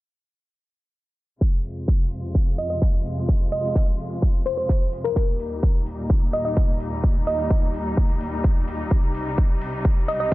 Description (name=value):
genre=EDM, festival progressive house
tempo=128 BPM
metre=4/4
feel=straight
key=F minor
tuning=A4 = 440 Hz
part: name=clear studio string section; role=sustained chords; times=1.4-10.3 s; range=C2 to F4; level=-29 LUFS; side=left 1 dB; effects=sidechain pumping, low-pass filter
part: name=electronic kick drum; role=drums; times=1.4-10.3 s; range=none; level=-19 LUFS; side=equal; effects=none
part: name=electronic hi-hat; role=drums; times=1.6-10.2 s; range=none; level=-55 LUFS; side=left 2 dB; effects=none
part: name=thumb-piano-like synth pluck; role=melody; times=2.6-10.3 s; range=Bb4 to Eb5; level=-26 LUFS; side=equal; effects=chorus, tape echo
room=digital ambience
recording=low-pass filter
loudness=-20 LUFS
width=side -18 dB against mid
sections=1.4-10.3 A section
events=filter sweep on string section 1.4-10.3; filter sweep 1.4-10.3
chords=1.4 Fm; 5.2 Eb; 8.9 Cm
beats=| 1.41 1.88 2.35 2.82 | 3.29 3.75 4.22 4.69 | 5.16 5.63 6.10 6.57 | 7.04 7.50 7.97 8.44 | 8.91 9.38 9.85 10.32